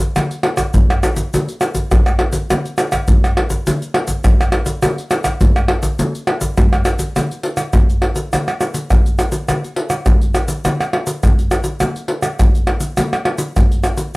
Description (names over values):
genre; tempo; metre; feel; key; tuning
samba; 103 BPM; 4/4; straight; none; none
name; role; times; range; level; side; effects
egg shaker, surdo, pandeiro and tamborim; percussion; 0.2-14.1 s; none; -14 LUFS; equal; none
room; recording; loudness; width
moderate studio reverb, RT60 0.6 s; home recording on cassette; -14 LUFS; side -23 dB against mid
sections
0.0-7.2 A section; 7.2-14.2 B section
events
none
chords
none